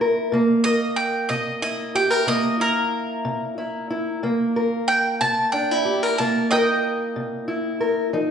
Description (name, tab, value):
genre	acoustic country blues, solo or duo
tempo	62 BPM (dotted quarters)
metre	12/8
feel	straight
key	C mixolydian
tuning	A4 = 438 Hz
part	fingerpicked steel-string acoustic guitar	accompaniment	0.0-8.3 s	C3 to Bb4	-21 LUFS	equal	none
part	bowl-back mandolin	melody	0.6-8.3 s	Bb4 to A5	-23 LUFS	right 1 dB	none
room	wet large studio reverb, RT60 1.3 s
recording	band playing live in one room, nothing above 10.4 kHz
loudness	-19 LUFS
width	side -7 dB against mid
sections	0.0-8.3 A section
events	none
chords	0.0 C7